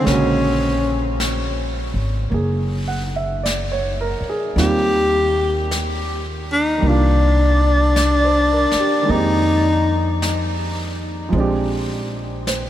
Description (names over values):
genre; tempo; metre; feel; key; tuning
jazz ballad; 53 BPM; 4/4; swing 68% on 8ths; unclear; A4 = 441 Hz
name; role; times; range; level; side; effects
warm tenor saxophone; melody; 0.0-10.2 s; C#4 to G4; -19 LUFS; left 1 dB; tape echo
warm grand piano; accompaniment; 0.0-12.7 s; C#3 to Ab5; -23 LUFS; right 3 dB; none
upright bass; bass; 0.1-12.7 s; F#1 to F2; -21 LUFS; equal; none
jazz brush drum kit; drums; 0.1-12.7 s; brushed snare drum, hi-hat, snare drum; -29 LUFS; left 1 dB; none
room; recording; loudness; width
moderate huge ambient reverb, RT60 6.7 s; dreamy mix soaked in reverb; -16 LUFS; side -12 dB against mid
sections
0.0-12.7 A section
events
none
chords
0.1 Bb7alt; 4.6 Eb6; 6.8 Cm11; 9.1 Fm11; 11.3 Bb13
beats
| 0.06 1.18 2.31 3.44 | 4.57 5.69 6.82 7.95 | 9.08 10.21 11.33 12.46